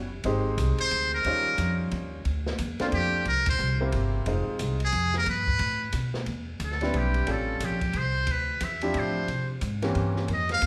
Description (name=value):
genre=jazz, small-group swing and bop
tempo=179 BPM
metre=3/4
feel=swing 63% on 8ths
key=unclear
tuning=A4 = 441 Hz
part: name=upright bass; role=bass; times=0.0-10.7 s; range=F1 to C3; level=-31 LUFS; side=equal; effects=none
part: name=clear concert grand piano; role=accompaniment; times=0.2-4.8, 6.8-10.3 s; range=E3 to C5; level=-33 LUFS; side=equal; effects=none
part: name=open jazz drum kit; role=drums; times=0.2-10.7 s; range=hi-hat, kick drum, ride cymbal, snare drum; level=-38 LUFS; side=equal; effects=none
part: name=trumpet with metal mute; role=melody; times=0.8-10.7 s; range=F4 to F5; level=-30 LUFS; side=equal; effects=none
room=moderate recital hall reverb, RT60 1.4 s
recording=recorded in a church or concert hall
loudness=-27 LUFS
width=mono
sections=0.0-6.3 A section; 6.3-10.7 B section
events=band accent 3.4; muted trumpet solo 6.3-10.7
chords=0.2 Abmaj7; 1.3 Eb13; 2.3 Dm7; 3.3 C7; 4.3 Fm7; 5.3 G; 6.3 Cmaj9; 7.3 A7alt; 8.3 Dm11; 9.3 C7b9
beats=| 0.25 0.58 0.92 | 1.25 1.59 1.92 | 2.26 2.59 2.93 | 3.26 3.60 3.93 | 4.27 4.60 4.93 | 5.27 5.60 5.94 | 6.27 6.61 6.94 | 7.28 7.61 7.94 | 8.28 8.61 8.95 | 9.28 9.62 9.95 | 10.29 10.62